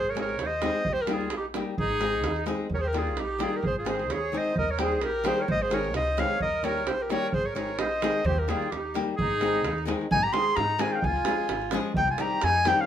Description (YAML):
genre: balkan folk, Balkan wedding band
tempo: 130 BPM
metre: 2/4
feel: swing 56% on 16ths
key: Ab major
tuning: A4 = 440 Hz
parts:
  - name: clear clarinet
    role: melody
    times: 0.0-12.9 s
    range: G4 to C6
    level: -27 LUFS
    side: left 1 dB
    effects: none
  - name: accordion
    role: second line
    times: 0.0-12.9 s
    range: Db4 to Db5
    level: -33 LUFS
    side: right 4 dB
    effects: none
  - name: upright bass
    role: bass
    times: 0.0-12.7 s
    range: Ab1 to Ab2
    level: -34 LUFS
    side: equal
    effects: none
  - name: flamenco guitar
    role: accompaniment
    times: 0.1-12.9 s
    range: Eb3 to Ab4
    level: -31 LUFS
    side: left 4 dB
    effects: none
  - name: davul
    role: percussion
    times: 0.2-12.8 s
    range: none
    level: -32 LUFS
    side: right 3 dB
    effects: none
room: moderate studio reverb, RT60 0.6 s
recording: minimal, uncompressed stereo recording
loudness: -24 LUFS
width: side -10 dB against mid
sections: 0.0-2.7 A section; 2.7-10.1 A section; 10.1-12.9 B section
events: none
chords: 0.0 Ab; 0.9 Eb; 1.8 Ab; 2.7 Eb; 3.6 Ab; 4.6 Eb; 5.5 Ab; 6.4 Eb; 7.3 Ab; 8.3 Eb; 9.2 Ab; 11.0 Db; 12.0 Cm